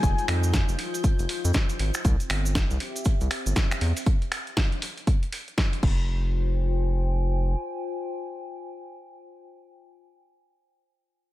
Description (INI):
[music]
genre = deep house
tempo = 119 BPM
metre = 4/4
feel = swing 61% on 16ths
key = F minor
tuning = A4 = 444 Hz
[part]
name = soft string machine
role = sustained chords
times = 0.0-2.0 s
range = F3 to Eb5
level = -39 LUFS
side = left 1 dB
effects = ensemble chorus, sidechain pumping
[part]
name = round analog bass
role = bass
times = 0.0-7.6 s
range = F1 to F2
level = -24 LUFS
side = equal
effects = sidechain pumping
[part]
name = dusty soul sampler-style drum kit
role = drums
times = 0.0-6.0 s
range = crash cymbal, finger snaps, hi-hat, snare drum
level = -30 LUFS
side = equal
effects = none
[part]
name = electronic kick drum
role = drums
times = 0.0-6.0 s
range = none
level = -23 LUFS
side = equal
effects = none
[part]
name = cabasa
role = percussion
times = 0.0-4.0 s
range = none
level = -37 LUFS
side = right 2 dB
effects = none
[part]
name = clear studio violin section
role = texture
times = 0.0-2.1 s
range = G6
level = -42 LUFS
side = right 1 dB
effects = sidechain pumping
[part]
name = warbly tape-like pad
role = texture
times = 0.0-9.9 s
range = C4 to Ab5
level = -35 LUFS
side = left 3 dB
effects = chorus, built-in reverb, sidechain pumping
[sound]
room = digital ambience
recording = none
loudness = -23 LUFS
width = side -16 dB against mid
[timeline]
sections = 0.0-6.1 A section; 6.1-10.1 B section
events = drop 0.0-6.1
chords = 0.0 Fm9; 2.0 C; 5.8 F5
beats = | 0.03 0.53 1.04 1.54 | 2.05 2.55 3.06 3.56 | 4.06 4.57 5.07 5.58 | 6.08 6.58 7.09 7.59 | 8.10 8.60 9.11 9.61